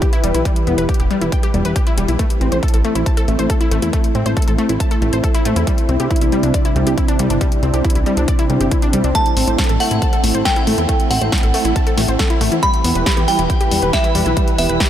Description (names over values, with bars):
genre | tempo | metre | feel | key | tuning
uplifting trance | 138 BPM | 4/4 | straight | A dorian | A4 = 440 Hz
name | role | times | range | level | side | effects
lush unison pad | sustained chords | 0.0-14.9 s | C3 to B4 | -21 LUFS | right 1 dB | chorus, sidechain pumping
wide unison pluck | arpeggios | 0.0-14.9 s | G3 to A5 | -22 LUFS | left 2 dB | sidechain pumping, analog delay
electronic kick drum | drums | 0.0-14.9 s | none | -17 LUFS | equal | none
punchy analog drum machine | drums | 0.0-14.9 s | hi-hat, snare drum | -24 LUFS | left 1 dB | sidechain pumping on hats
plucky analog bass | bass | 0.2-14.8 s | E1 to E2 | -19 LUFS | equal | sidechain pumping
glassy synth bell | second line | 9.1-14.9 s | E5 to B5 | -20 LUFS | right 1 dB | chorus, tremolo, diffuse ambient delay
room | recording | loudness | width
moderate huge ambient reverb, RT60 8.2 s | dreamy mix soaked in reverb | -14 LUFS | side -11 dB against mid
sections
0.0-14.9 A section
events
filter sweep on analog synth pad 0.0-14.9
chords
0.0 Em; 2.2 Am; 5.7 Cadd9; 9.2 Am; 12.6 Em